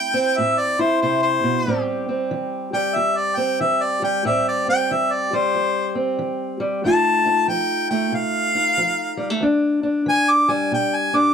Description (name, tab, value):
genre	acoustic country blues, solo or duo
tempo	93 BPM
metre	4/4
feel	swing 63% on 8ths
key	A minor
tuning	A4 = 440 Hz
part	warm harmonica	melody	0.0-11.3 s	C5 to D6	-19 LUFS	left 1 dB	none
part	fingerpicked steel-string acoustic guitar	accompaniment	0.0-11.3 s	E2 to G4	-22 LUFS	equal	none
room	moderate booth ambience, RT60 0.3 s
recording	dark, warm production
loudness	-18 LUFS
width	side -7 dB against mid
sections	0.0-11.3 A section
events	harmonica solo 0.0-11.3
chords	0.0 Dsus2 (rootless); 1.7 Am7; 6.8 F7; 9.4 Em7